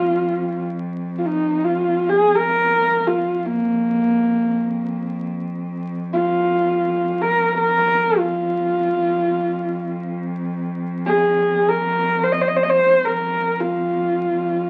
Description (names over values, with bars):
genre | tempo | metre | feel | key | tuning
mongolian traditional, Mongolian folk | free time | none | none | F yu mode | A4 = 440 Hz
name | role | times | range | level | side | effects
dark horsehead fiddle | melody | 0.0-14.7 s | Bb3 to Eb5 | -20 LUFS | equal | none
rich cello | drone | 0.0-14.7 s | F2 | -29 LUFS | equal | none
room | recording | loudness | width
wet studio reverb, RT60 0.5 s | very old 78 rpm record, vinyl crackle | -20 LUFS | mono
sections
0.0-14.7 A section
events
none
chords
none